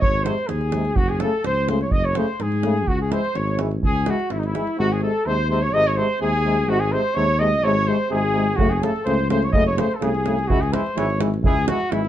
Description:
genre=balkan folk, Balkan brass band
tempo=126 BPM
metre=2/4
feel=straight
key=unclear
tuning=A4 = 437 Hz
part: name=mellow cornet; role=melody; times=0.0-12.1 s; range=D#4 to D#5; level=-24 LUFS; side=equal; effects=none
part: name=clear trumpet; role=second line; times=0.0-12.1 s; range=D#4 to D#5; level=-28 LUFS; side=left 1 dB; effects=none
part: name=dark tuba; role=bass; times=0.0-12.1 s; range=F#1 to G#2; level=-23 LUFS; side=left 1 dB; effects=none
part: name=davul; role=percussion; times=0.0-4.7, 8.6-12.1 s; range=none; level=-25 LUFS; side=right 2 dB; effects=none
part: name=brilliant trombone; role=accompaniment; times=0.2-12.0 s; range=B#2 to E3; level=-30 LUFS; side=right 5 dB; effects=none
part: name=mellow euphonium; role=accompaniment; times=0.3-12.0 s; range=G#3 to A3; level=-26 LUFS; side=left 4 dB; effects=none
room=moderate studio reverb, RT60 0.5 s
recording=dark, warm production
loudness=-18 LUFS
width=side -12 dB against mid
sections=0.0-4.8 A section; 4.8-12.1 A section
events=none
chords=0.0 G#; 1.0 F#m; 2.9 C#m; 4.8 G#; 8.6 F#m; 10.5 C#m

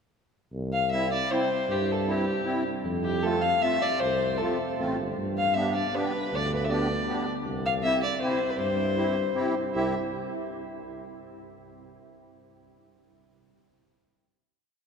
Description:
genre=alpine folk, alpine dance band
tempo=156 BPM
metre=3/4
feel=rubato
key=C major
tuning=A4 = 438 Hz
part: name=warm tuba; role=bass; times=0.5-9.9 s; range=G1 to G2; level=-32 LUFS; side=right 1 dB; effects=none
part: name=dark fiddle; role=melody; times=0.7-9.9 s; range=G4 to F5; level=-27 LUFS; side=left 2 dB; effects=none
part: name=musette accordion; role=accompaniment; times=0.9-9.9 s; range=G3 to G4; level=-31 LUFS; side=right 1 dB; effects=none
room=wet cathedral reverb, RT60 5.1 s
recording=recorded in a church or concert hall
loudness=-25 LUFS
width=side -6 dB against mid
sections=0.5-9.8 A section; 9.8-10.9 final chord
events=none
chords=0.5 C; 2.8 F; 5.2 G; 7.5 C

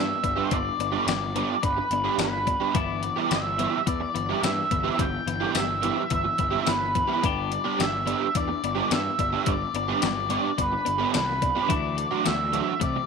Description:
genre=indie rock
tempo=107 BPM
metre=4/4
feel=straight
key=G major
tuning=A4 = 440 Hz
part: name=octave-fuzz lead guitar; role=melody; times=0.0-13.1 s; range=A4 to G5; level=-26 LUFS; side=right 1 dB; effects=distortion, slapback echo
part: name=twelve-string electric guitar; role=riff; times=0.0-13.1 s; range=E3 to G4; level=-32 LUFS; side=left 12 dB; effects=none
part: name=fuzz picked electric bass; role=bass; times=0.0-13.0 s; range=G1 to C3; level=-33 LUFS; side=right 1 dB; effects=overdrive
part: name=clean 12-bit digital drum machine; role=drums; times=0.2-12.9 s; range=hi-hat, kick drum, snare drum, tambourine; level=-29 LUFS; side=left 4 dB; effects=overdrive
part: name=crunchy overdriven guitar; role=riff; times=0.4-13.0 s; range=F#3 to G4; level=-30 LUFS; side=right 13 dB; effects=ensemble chorus
room=moderate echo chamber reverb, RT60 2.3 s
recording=1960s-style stereo with parts hard left and right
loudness=-23 LUFS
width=side -5 dB against mid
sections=0.0-13.1 A section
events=none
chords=0.0 G; 2.8 Em/G; 7.2 G; 11.7 Dadd9

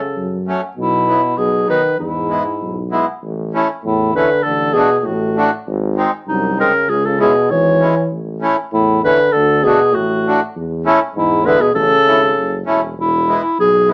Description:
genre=alpine folk, alpine dance band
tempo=98 BPM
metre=2/4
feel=rubato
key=E major, A major from 3.2 s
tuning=A4 = 440 Hz
part: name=warm clarinet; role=melody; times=0.0-13.9 s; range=D#4 to C#5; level=-17 LUFS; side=equal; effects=none
part: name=mellow euphonium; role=second line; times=0.0-12.6 s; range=F#2 to E3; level=-22 LUFS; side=equal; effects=none
part: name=warm tuba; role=bass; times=0.2-13.9 s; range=E1 to F#2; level=-26 LUFS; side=equal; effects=none
part: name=accordion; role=accompaniment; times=0.5-13.9 s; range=F#3 to F#4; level=-20 LUFS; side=equal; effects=none
room=moderate studio reverb, RT60 0.6 s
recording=none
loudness=-16 LUFS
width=mono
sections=0.0-3.2 A section; 3.2-13.0 B section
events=none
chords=0.0 F#m; 0.8 Bsus4; 1.4 B; 2.0 E; 3.2 A; 4.5 D/A; 5.7 G#; 6.9 C#m; 8.1 A; 9.4 D; 10.6 A/E; 11.2 E; 11.8 A; 13.0 E

